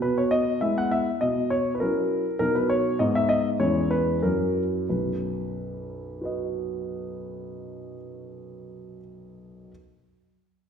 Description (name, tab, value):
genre	classical-period piano sonatina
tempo	90-101 BPM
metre	2/4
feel	straight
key	B major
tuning	A4 = 440 Hz
part	warm grand piano	solo	0.0-9.7 s	B1 to F#5	-24 LUFS	equal	none
room	wet recital hall reverb, RT60 1.3 s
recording	heard from further back in the room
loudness	-23 LUFS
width	side -7 dB against mid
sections	0.0-4.9 A section; 4.9-7.5 B section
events	slowing down 1.8-4.9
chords	0.0 E/B; 1.2 F#7/B; 2.4 B; 3.0 G#m; 3.6 C#m/E; 4.2 F#7; 4.9 B